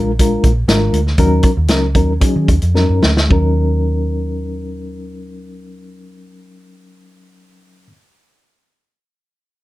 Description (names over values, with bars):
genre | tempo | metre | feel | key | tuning
uptempo 1960s-style soul | 106-124 BPM | 4/4 | straight | Eb minor | A4 = 439 Hz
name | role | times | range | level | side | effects
mellow reed electric piano | accompaniment | 0.0-7.9 s | Gb3 to Bb4 | -19 LUFS | left 2 dB | fast tremolo
vintage muted fingered electric bass | bass | 0.0-7.9 s | Ab1 to Eb3 | -16 LUFS | equal | none
vintage drum kit | drums | 0.2-3.4 s | hi-hat, kick drum, snare drum | -15 LUFS | equal | none
room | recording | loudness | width
light reverb | none | -12 LUFS | side -17 dB against mid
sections
0.0-3.3 A section; 3.3-7.8 B section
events
slowing down 0.0-3.3; drum fill 2.8-3.3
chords
0.0 Bb7; 1.2 Ebm7